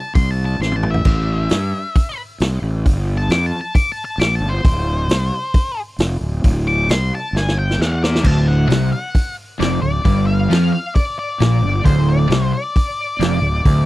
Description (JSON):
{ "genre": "blues rock power trio and southern rock", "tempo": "133 BPM", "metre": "4/4", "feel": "straight", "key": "unclear", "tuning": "A4 = 437 Hz", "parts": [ { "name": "octave-fuzz lead guitar", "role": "melody", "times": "0.0-13.8 s", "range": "C5 to D6", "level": "-23 LUFS", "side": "left 2 dB", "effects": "distortion" }, { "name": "fuzz fingered electric bass", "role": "bass", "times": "0.2-13.9 s", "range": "D1 to G2", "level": "-19 LUFS", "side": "equal", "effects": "overdrive" }, { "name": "vintage drum kit", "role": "drums", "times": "0.2-13.8 s", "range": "crash cymbal, hi-hat, kick drum, snare drum, toms", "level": "-16 LUFS", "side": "equal", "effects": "none" }, { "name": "crunchy overdriven guitar", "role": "riff", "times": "8.2-13.9 s", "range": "D2 to F3", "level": "-16 LUFS", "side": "equal", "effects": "none" } ], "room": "little or no reverb", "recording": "dry, close 1970s-style studio recording", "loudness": "-15 LUFS", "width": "side -17 dB against mid", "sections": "0.0-8.2 A section; 8.2-13.9 B section", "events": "lead electric guitar solo 0.0-8.2; drum fill 0.6-1.1, 7.3-8.2", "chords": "0.0 D7(no3) (rootless); 1.1 Am7; 2.9 Gm7; 4.7 D7(no3); 7.3 E7#9/G; 8.2 D7#9; 10.0 Gm7; 11.8 Dm7" }